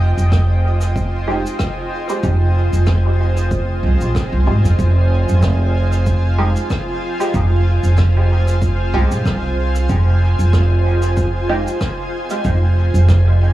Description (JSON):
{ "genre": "ambient dub", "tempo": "94 BPM", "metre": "4/4", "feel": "swing 56% on 16ths", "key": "F minor", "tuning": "A4 = 440 Hz", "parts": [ { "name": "granular cloud pad", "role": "sustained chords", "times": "0.0-13.5 s", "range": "F4 to Ab5", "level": "-23 LUFS", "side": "right 1 dB", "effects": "built-in reverb, vintage 12-bit sampler grit" }, { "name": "upright bass", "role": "bass", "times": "0.0-13.5 s", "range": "F1 to C2", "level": "-14 LUFS", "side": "equal", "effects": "tube saturation" }, { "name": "cabasa and rim click", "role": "drums", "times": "0.2-13.2 s", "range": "none", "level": "-32 LUFS", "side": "equal", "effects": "dub echo" }, { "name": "electronic kick drum", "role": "drums", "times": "0.3-13.2 s", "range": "none", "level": "-22 LUFS", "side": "equal", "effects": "overdrive" }, { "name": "filtered dub chord stab", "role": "stabs", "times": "1.3-12.4 s", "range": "Ab3 to G4", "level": "-25 LUFS", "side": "right 2 dB", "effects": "phaser, analog chorus, dub echo" } ], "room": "studio reverb", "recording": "echo-heavy mix, small room ambience", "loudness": "-14 LUFS", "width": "side -15 dB against mid", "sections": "0.0-13.5 A section", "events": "none", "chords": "0.0 Fm9", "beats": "0.32 0.96 1.60 | 2.23 2.87 3.51 4.15 | 4.79 5.43 6.06 6.70 | 7.34 7.98 8.62 9.26 | 9.89 10.53 11.17 11.81 | 12.45 13.09" }